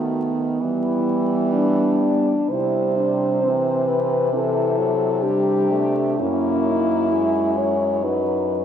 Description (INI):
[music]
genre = classical, lyrical piece for horn quartet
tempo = 59-68 BPM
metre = 4/4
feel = rubato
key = unclear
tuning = A4 = 440 Hz
[part]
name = mellow French horn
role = melody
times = 0.0-8.6 s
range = D4 to C#5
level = -21 LUFS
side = left 2 dB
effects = none
[part]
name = dark French horn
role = second line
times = 0.0-8.6 s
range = B3 to E4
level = -24 LUFS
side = right 5 dB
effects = none
[part]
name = mellow French horn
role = accompaniment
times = 0.0-8.6 s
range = E3 to A#3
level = -26 LUFS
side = equal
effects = none
[part]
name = clear French horn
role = bass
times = 0.0-8.6 s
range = F#2 to E3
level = -26 LUFS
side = right 1 dB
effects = none
[sound]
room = wet church reverb, RT60 2.7 s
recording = heard from further back in the room, vinyl crackle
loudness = -18 LUFS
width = side -8 dB against mid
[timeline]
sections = 0.0-8.6 A section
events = none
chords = 0.0 B7/D#; 0.6 Em; 2.5 C; 6.2 F#7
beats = 0.61 1.52 | 2.50 3.44 4.34 5.23 | 6.21 7.13 8.04